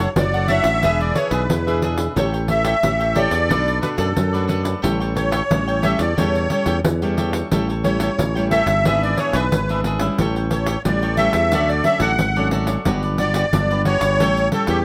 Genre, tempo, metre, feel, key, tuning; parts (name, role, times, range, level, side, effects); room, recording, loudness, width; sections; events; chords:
samba and choro; 90 BPM; 4/4; straight; A4 = 445 Hz
musette accordion; melody; 0.0-14.8 s; G4 to F#5; -23 LUFS; equal; tape echo
cavaquinho; accompaniment; 0.0-14.8 s; D4 to G5; -29 LUFS; equal
nylon-string guitar; accompaniment; 0.0-14.8 s; G2 to C#5; -29 LUFS; equal
modern bright fingered electric bass; bass; 0.0-14.8 s; E1 to F#2; -24 LUFS; equal
pandeiro; percussion; 0.2-14.8 s; -26 LUFS; equal
light reverb; close, detailed microphones; -19 LUFS; mono
0.0-14.8 A section
0.0 Dmaj9/F#; 0.8 E7; 2.2 A7; 3.5 Bm7; 4.8 A7; 8.8 E7/G#; 10.2 A7; 11.5 Dmaj7; 12.9 Gmaj7; 14.2 A7